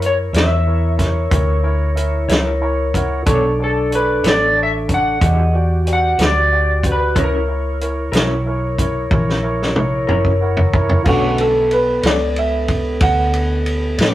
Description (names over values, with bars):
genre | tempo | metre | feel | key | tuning
slow blues | 62 BPM (dotted quarters) | 12/8 | straight | B minor | A4 = 440 Hz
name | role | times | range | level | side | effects
clear baby grand piano | accompaniment | 0.0-13.7 s | D3 to A#5 | -22 LUFS | right 1 dB | none
mellow tonewheel organ | sustained chords | 0.0-14.1 s | B3 to D#5 | -22 LUFS | left 1 dB | slow rotary speaker
vintage muted fingered electric bass | bass | 0.0-14.1 s | F#1 to A2 | -19 LUFS | equal | none
warm soul drum kit | drums | 0.0-14.1 s | crash cymbal, hi-hat, kick drum, ride cymbal, snare drum, toms | -18 LUFS | equal | none
electric slide guitar | melody | 0.1-10.4 s | A4 to F#5 | -18 LUFS | left 1 dB | none
electric guitar through a small old amp | accompaniment | 0.3-14.1 s | E3 to C#5 | -24 LUFS | left 1 dB | tremolo
room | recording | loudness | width
moderate studio reverb, RT60 0.5 s | rough rehearsal-room recording | -14 LUFS | side -14 dB against mid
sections
0.0-11.1 A section; 11.1-14.1 B section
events
grand piano fill 2.3-3.3, 10.1-11.1; drum fill 9.1-11.1; grand piano solo 11.1-14.1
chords
0.0 F#7; 3.3 Bm9; 5.2 Em9; 7.2 F#7; 11.1 Bm9